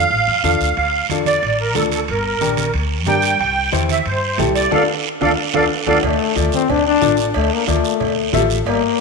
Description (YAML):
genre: latin, cumbia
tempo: 182 BPM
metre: 4/4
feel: straight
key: D minor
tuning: A4 = 440 Hz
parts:
  - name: musette accordion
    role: melody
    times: 0.0-6.0 s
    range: A4 to G5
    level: -18 LUFS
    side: right 4 dB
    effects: none
  - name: upright bass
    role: bass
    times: 0.0-8.8 s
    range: G1 to G2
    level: -23 LUFS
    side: equal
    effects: none
  - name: guiro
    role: percussion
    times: 0.1-9.0 s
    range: none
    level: -27 LUFS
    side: right 12 dB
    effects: none
  - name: clear upright piano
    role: accompaniment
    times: 0.4-8.6 s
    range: D4 to E5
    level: -22 LUFS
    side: left 10 dB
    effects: none
  - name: congas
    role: percussion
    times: 0.4-8.5 s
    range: none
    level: -27 LUFS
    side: right 9 dB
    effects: none
  - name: timbales and cowbell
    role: percussion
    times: 0.8-8.8 s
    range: none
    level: -26 LUFS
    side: right 11 dB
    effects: none
  - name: bright trombone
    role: second line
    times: 6.0-9.0 s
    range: A3 to D4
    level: -17 LUFS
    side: left 9 dB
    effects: tape echo
room: moderate echo chamber reverb, RT60 1.9 s, studio ambience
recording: 1960s-style stereo with parts hard left and right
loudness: -15 LUFS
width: side -3 dB against mid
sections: 0.0-6.0 A section; 6.0-9.0 B section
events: band accent 4.7-6.0; drum fill 5.2-6.0; trombone solo 6.0-9.0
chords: 0.0 Dm; 2.1 Gm; 3.4 C; 4.7 Dm